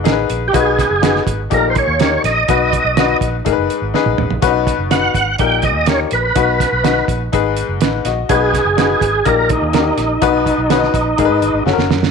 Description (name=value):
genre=uptempo 1960s-style soul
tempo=124 BPM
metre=4/4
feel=straight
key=B major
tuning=A4 = 438 Hz
part: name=bright upright piano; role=accompaniment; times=0.0-12.1 s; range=G#2 to D#5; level=-17 LUFS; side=left 11 dB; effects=none
part: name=vintage muted fingered electric bass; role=bass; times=0.0-12.1 s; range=F#1 to G#2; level=-22 LUFS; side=right 1 dB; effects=none
part: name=cloth-damped thuddy drum kit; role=drums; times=0.1-12.1 s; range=hi-hat, kick drum, snare drum, toms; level=-19 LUFS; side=right 6 dB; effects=none
part: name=overdriven tonewheel organ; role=melody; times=0.5-11.6 s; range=D#4 to G5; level=-16 LUFS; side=right 3 dB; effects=chorus vibrato, fast rotary speaker, slapback echo
room=moderate plate reverb, RT60 1.5 s, studio reverb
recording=1960s-style stereo with parts hard left and right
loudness=-12 LUFS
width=side -5 dB against mid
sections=0.0-12.1 A section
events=drum fill 3.9-4.4, 11.7-12.1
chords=0.0 G#m; 0.5 B; 1.5 D#/A#; 2.5 B; 3.5 G#m; 4.4 B; 5.4 D#/A#; 6.4 B; 7.3 G#m; 8.3 B; 9.3 D#/A#; 10.2 B; 11.2 G#m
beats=0.06 | 0.54 1.03 1.52 2.00 | 2.49 2.97 3.46 3.94 | 4.43 4.91 5.39 5.88 | 6.36 6.84 7.33 7.81 | 8.29 8.78 9.26 9.74 | 10.22 10.71 11.19 11.67